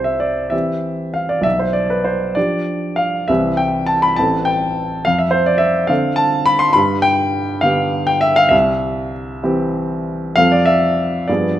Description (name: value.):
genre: classical, romantic character piece for solo piano.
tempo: 58-71 BPM (dotted quarters).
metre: 6/8.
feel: rubato.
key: C major.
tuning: A4 = 440 Hz.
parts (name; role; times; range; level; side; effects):
warm baby grand piano; solo; 0.0-11.6 s; A1 to C6; -14 LUFS; equal; none.
room: moderate recital hall reverb, RT60 1.5 s.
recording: none.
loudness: -14 LUFS.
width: side -12 dB against mid.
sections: 0.0-11.6 A section.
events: none.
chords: 0.0 C; 1.4 G7/B; 3.3 C; 4.2 Am; 5.0 Dm7/F; 6.8 G; 8.5 C; 10.4 F.